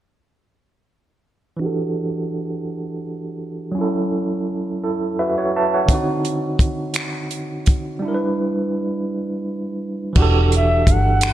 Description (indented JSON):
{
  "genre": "slow six-eight R&B",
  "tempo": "56 BPM (dotted quarters)",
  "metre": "6/8",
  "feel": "straight",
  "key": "E dorian",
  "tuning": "A4 = 444 Hz",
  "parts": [
    { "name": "overdriven tine electric piano", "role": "accompaniment", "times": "1.6-11.3 s", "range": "D3 to A5", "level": "-21 LUFS", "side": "right 2 dB", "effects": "fast tremolo, low-pass filter" },
    { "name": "compact cocktail drum kit", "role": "drums", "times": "5.9-11.3 s", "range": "crash cymbal, finger snaps, hi-hat, kick drum", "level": "-18 LUFS", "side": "equal", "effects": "vintage 12-bit sampler grit" },
    { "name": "vintage muted fingered electric bass", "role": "bass", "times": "10.2-11.3 s", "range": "E1 to G1", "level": "-17 LUFS", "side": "equal", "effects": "none" },
    { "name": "gliding portamento lead", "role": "melody", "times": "10.6-11.3 s", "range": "E5 to F#5", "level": "-19 LUFS", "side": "equal", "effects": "chorus, phaser, analog delay" }
  ],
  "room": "moderate plate reverb, RT60 2.9 s",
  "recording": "dreamy mix soaked in reverb",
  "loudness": "-18 LUFS",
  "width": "side -13 dB against mid",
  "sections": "1.6-10.2 A section; 10.2-11.3 B section",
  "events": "filter sweep on tine electric piano 1.6-10.2; tine electric piano fill 4.8-5.9",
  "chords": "1.6 Em11; 3.7 F#m7; 5.9 D7b9; 8.0 G6; 10.2 Em11",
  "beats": "| 1.60 2.67 | 3.74 4.82 | 5.89 6.96 | 8.03 9.10 | 10.17 11.24"
}